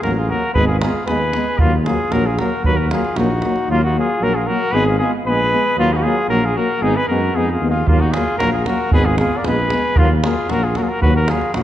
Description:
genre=balkan folk, Balkan brass band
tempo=115 BPM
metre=2/4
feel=straight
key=Eb minor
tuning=A4 = 440 Hz
part: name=clear flugelhorn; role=melody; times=0.0-11.6 s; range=F4 to D5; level=-20 LUFS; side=equal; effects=slapback echo
part: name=clear trumpet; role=second line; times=0.0-11.6 s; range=Bb3 to Bb4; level=-25 LUFS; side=left 2 dB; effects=none
part: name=bright trombone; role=accompaniment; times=0.0-11.6 s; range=Gb3 to Ab3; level=-26 LUFS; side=right 4 dB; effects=none
part: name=mellow tuba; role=bass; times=0.0-11.6 s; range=Ab1 to Gb2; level=-21 LUFS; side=equal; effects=none
part: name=davul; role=percussion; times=0.0-3.6, 7.9-11.6 s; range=none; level=-20 LUFS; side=right 1 dB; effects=none
part: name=dark euphonium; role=accompaniment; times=0.1-11.6 s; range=Bb3 to Cb4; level=-24 LUFS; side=left 4 dB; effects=none
room=moderate concert hall reverb, RT60 2.1 s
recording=dark, warm production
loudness=-15 LUFS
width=side -12 dB against mid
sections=0.0-3.7 A section; 3.7-11.6 A section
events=none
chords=0.0 Ebm (rootless); 0.6 Abm; 1.6 Ebm; 4.7 Abm; 5.8 Ebm; 6.8 Abm; 7.9 Ebm; 8.9 Abm; 10.0 Ebm

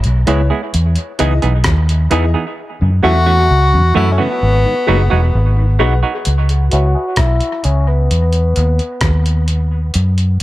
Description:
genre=dub reggae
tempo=65 BPM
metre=4/4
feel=straight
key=C# minor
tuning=A4 = 441 Hz
part: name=vintage muted fingered electric bass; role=bass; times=0.0-10.4 s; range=E1 to F#2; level=-13 LUFS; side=equal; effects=none
part: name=dusty soul sampler-style drum kit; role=drums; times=0.0-10.4 s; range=hi-hat, kick drum, rim click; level=-20 LUFS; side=equal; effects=none
part: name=semi-hollow electric guitar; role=accompaniment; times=0.3-9.8 s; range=E3 to G#4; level=-20 LUFS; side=right 6 dB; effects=tremolo, high-pass filter, low-pass filter, dub echo
part: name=warm upright piano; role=stabs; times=0.3-10.4 s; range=E4 to F#5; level=-24 LUFS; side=left 5 dB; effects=high-pass filter, low-pass filter, dub echo
part: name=mellow tonewheel organ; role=accompaniment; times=2.8-6.1 s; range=F#2 to F#4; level=-25 LUFS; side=left 2 dB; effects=none
part: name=breathy tenor saxophone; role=melody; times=3.0-9.5 s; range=B3 to F#4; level=-18 LUFS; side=left 2 dB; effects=low-pass filter, dub echo
room=light reverb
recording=none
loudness=-12 LUFS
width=side -16 dB against mid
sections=0.0-6.3 A section; 6.3-10.4 B section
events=break 0.0-2.6; kick muted 2.6-6.3; part muted 2.6-6.3; filter sweep 2.6-10.4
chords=0.0 C#m7; 0.7 Emaj7; 2.6 F#m7; 4.4 G#m7; 6.3 C#m7; 8.1 Emaj7

